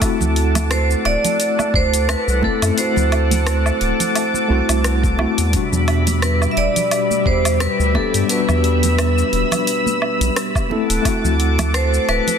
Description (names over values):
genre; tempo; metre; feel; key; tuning
sunset chillout; 87 BPM; 4/4; swing 56% on 16ths; unclear; A4 = 438 Hz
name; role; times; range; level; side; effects
mellow tine electric piano; accompaniment; 0.0-12.4 s; B2 to A4; -22 LUFS; moving between left 6 dB and right 5 dB; medium stereo tremolo, auto-pan, tape echo, shimmer reverb
lush unison pad; sustained chords; 0.0-12.4 s; G3 to E6; -23 LUFS; left 2 dB; chorus, shimmer reverb
electronic kick drum; drums; 0.0-11.2 s; none; -21 LUFS; equal; none
smooth R&B drum kit; drums; 0.0-12.4 s; hi-hat, rim click, shaker, woodblock; -24 LUFS; equal; soft clipping on snare
round analog bass; bass; 0.2-12.2 s; D1 to G2; -18 LUFS; equal; none
congas; percussion; 0.2-12.4 s; none; -29 LUFS; right 5 dB; none
vibraphone with hard mallets; melody; 0.7-12.4 s; A4 to E5; -21 LUFS; right 2 dB; digital delay, shimmer reverb
room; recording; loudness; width
moderate concert hall reverb, RT60 2.0 s, digital ambience; dense, heavily limited modern master; -15 LUFS; side -7 dB against mid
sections
0.0-12.4 A section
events
none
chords
0.0 D7; 5.5 Em7; 10.7 D7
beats
| 0.01 0.70 1.40 2.08 | 2.77 3.46 4.15 4.84 | 5.53 6.22 6.91 7.60 | 8.29 8.98 9.67 10.36 | 11.05 11.74